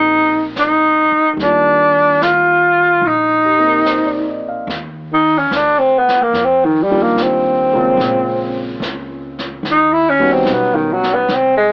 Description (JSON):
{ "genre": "jazz ballad", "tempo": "73 BPM", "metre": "4/4", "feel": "swing 68% on 8ths", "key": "Eb major", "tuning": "A4 = 440 Hz", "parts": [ { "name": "breathy tenor saxophone", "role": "melody", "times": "0.0-11.7 s", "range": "Eb3 to F4", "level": "-14 LUFS", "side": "equal", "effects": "cassette tape" }, { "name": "dark concert grand piano", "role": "accompaniment", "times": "0.0-11.3 s", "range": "Db3 to F5", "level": "-24 LUFS", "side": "equal", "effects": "cassette tape" }, { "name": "upright bass", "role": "bass", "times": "0.0-11.7 s", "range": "Bb1 to F2", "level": "-32 LUFS", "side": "equal", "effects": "none" }, { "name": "vintage brush drum kit", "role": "drums", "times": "0.6-11.7 s", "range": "brushed snare drum, hi-hat, snare drum", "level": "-30 LUFS", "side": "equal", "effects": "cassette tape" } ], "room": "light reverb", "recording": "home recording on cassette, AM radio sound", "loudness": "-14 LUFS", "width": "mono", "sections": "0.0-4.7 A section; 4.7-11.7 B section", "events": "tenor saxophone solo 4.7-11.7", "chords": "0.0 Ebmaj9; 8.0 Bbm7; 9.6 Eb7alt", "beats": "0.55 | 1.37 2.20 3.02 3.85 | 4.69 5.51 6.34 7.17 | 7.99 8.81 9.64 10.46 | 11.28" }